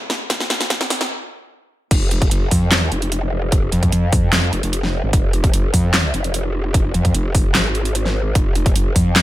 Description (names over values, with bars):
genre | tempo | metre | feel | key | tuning
heavy wobble dubstep | 149 BPM | 4/4 | half-time | F phrygian | A4 = 439 Hz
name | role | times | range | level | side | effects
dubstep drum kit | drums | 0.1-9.2 s | crash cymbal, handclaps, hi-hat, snare drum | -19 LUFS | equal | none
electronic kick drum | drums | 0.3-9.0 s | none | -18 LUFS | equal | none
growl bass | bass | 1.9-9.2 s | F1 to F2 | -18 LUFS | equal | distortion, chorus, overdrive
room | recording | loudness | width
little or no reverb | high-pass filter | -15 LUFS | side -15 dB against mid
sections
0.0-1.9 A section; 1.9-9.2 B section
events
build-up 0.0-1.9; drum fill 0.0-1.1; stop 1.1-1.9; drop 1.9-9.2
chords
none